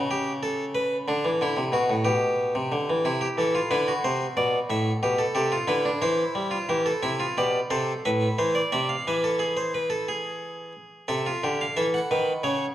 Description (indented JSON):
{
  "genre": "classical, baroque-style 3-part fugue for harpsichord",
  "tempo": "60 BPM (dotted quarters)",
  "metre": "6/8",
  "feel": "straight",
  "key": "C major, A minor from 7.0 s",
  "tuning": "A4 = 440 Hz",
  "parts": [
    { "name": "harpsichord", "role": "solo", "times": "0.0-12.7 s", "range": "A2 to F#5", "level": "-23 LUFS", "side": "equal", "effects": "none" }
  ],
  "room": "wet recital hall reverb, RT60 1.6 s",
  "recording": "worn, warbling old tape, cassette tape, warbly pitch drift",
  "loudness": "-23 LUFS",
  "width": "side -12 dB against mid",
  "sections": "0.0-7.0 A section; 7.0-11.1 B section; 11.1-12.7 C section",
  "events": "none",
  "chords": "0.1 A7/C#; 1.1 D7; 2.1 G/B; 3.0 C; 4.0 D7; 5.0 G7/B; 6.0 C/E; 7.0 Am; 9.1 E; 11.1 Am/C; 12.1 B"
}